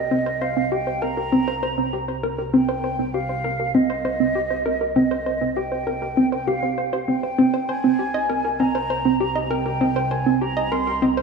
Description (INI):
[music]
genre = ambient, sequencer-driven space music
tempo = 99 BPM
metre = 4/4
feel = straight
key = C minor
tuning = A4 = 440 Hz
[part]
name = mellow hollow silver concert flute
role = melody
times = 0.0-11.1 s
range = Eb5 to C6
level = -25 LUFS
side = right 1 dB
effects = analog delay
[part]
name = hollow square pluck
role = riff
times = 0.0-11.2 s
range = C4 to Eb5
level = -21 LUFS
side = right 1 dB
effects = chorus, analog delay
[part]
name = fat analog bass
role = bass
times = 0.0-11.2 s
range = C2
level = -33 LUFS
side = right 2 dB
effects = none
[sound]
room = wet plate reverb, RT60 2.6 s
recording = echo-heavy mix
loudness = -19 LUFS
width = side -4 dB against mid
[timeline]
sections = 0.0-11.2 A section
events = fade-in on analog synth bass 0.0-11.2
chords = 0.0 Cm7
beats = | 0.11 0.72 1.32 1.93 | 2.54 3.14 3.75 4.36 | 4.96 5.57 6.17 6.78 | 7.39 7.99 8.60 9.20 | 9.81 10.42 11.02